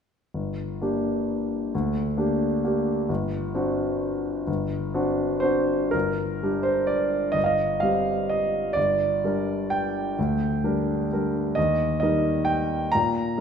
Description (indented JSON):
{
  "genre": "classical, piano waltz",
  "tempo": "115-139 BPM",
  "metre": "3/4",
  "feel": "rubato",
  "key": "G minor",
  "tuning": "A4 = 438 Hz",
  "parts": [
    { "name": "warm concert grand piano", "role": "solo", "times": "0.3-13.4 s", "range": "G1 to Bb5", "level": "-22 LUFS", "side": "equal", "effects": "none" }
  ],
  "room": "wet recital hall reverb, RT60 1.7 s",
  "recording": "minimal, uncompressed stereo recording",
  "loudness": "-22 LUFS",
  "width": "side -7 dB against mid",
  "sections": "0.3-5.9 A section; 5.9-13.4 B section",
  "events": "none",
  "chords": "0.3 Gm; 3.1 D7/G; 5.9 Gm; 7.4 Cm/G; 8.8 Gm; 11.6 Eb",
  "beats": "| 0.35 0.81 1.27 | 1.73 2.18 2.64 | 3.09 3.55 4.02 | 4.48 4.94 5.44 | 5.94 6.42 6.90 | 7.36 7.82 8.29 | 8.76 9.22 9.72 | 10.17 10.62 11.10 | 11.57 12.01 12.47 | 12.93 13.37"
}